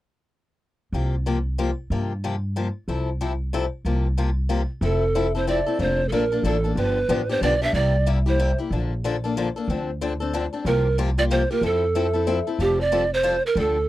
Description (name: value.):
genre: acoustic string swing (jazz manouche).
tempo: 185 BPM.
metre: 3/4.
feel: swing 61% on 8ths.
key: F major.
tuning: A4 = 440 Hz.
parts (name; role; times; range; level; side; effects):
picked steel-string acoustic guitar; accompaniment; 0.9-13.8 s; C3 to A4; -26 LUFS; left 5 dB; none.
upright bass; bass; 0.9-13.9 s; F1 to G2; -24 LUFS; equal; none.
breathy pan flute; melody; 4.8-8.6, 10.7-13.9 s; G4 to E5; -22 LUFS; right 3 dB; none.
room: light reverb.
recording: dry, close 1970s-style studio recording.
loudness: -20 LUFS.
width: side -15 dB against mid.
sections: 0.9-4.8 A section; 4.8-12.6 B section; 12.6-13.9 C section.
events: none.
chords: 0.9 C7sus4; 2.9 Fmaj7/C; 3.9 C7sus4; 4.8 Fmaj7; 5.8 Bbmaj7/F; 6.8 G7; 7.7 C9; 8.7 Bbmaj7; 9.7 Dm7; 10.7 C7sus4; 11.6 Fmaj7; 12.6 Fadd9.